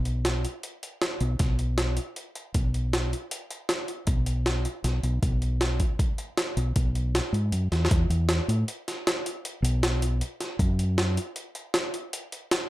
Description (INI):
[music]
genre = progressive instrumental, band music in an uneven meter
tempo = 157 BPM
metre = 7/4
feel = straight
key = unclear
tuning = A4 = 441 Hz
[part]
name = fingered electric bass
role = bass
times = 0.0-11.2 s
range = B1 to A2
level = -25 LUFS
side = equal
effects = none
[part]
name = jungle sampler-style drum kit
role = drums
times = 0.1-12.6 s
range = hi-hat, kick drum, snare drum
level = -27 LUFS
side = equal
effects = overdrive
[sound]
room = little or no reverb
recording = none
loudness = -24 LUFS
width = side -16 dB against mid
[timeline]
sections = 0.0-7.9 A section; 7.9-12.7 B section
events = drum fill 7.7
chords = none